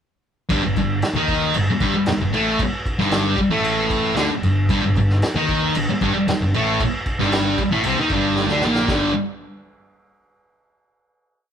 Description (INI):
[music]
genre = garage rock duo or trio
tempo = 114 BPM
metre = 4/4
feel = straight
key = G minor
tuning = A4 = 440 Hz
[part]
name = thick fuzz guitar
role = riff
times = 0.5-9.1 s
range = G2 to Eb4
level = -18 LUFS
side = equal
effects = distortion
[part]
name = overdriven picked electric bass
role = bass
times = 0.5-9.1 s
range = G1 to Eb2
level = -28 LUFS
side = equal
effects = none
[part]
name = vintage drum kit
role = drums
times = 0.5-9.0 s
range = crash cymbal, kick drum, snare drum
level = -24 LUFS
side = equal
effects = none
[sound]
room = light reverb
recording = band playing live in one room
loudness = -17 LUFS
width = side -8 dB against mid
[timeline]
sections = 0.5-8.9 riff; 8.9-11.0 final chord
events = drum fill 8.4-8.9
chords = 0.5 N.C.; 8.9 G5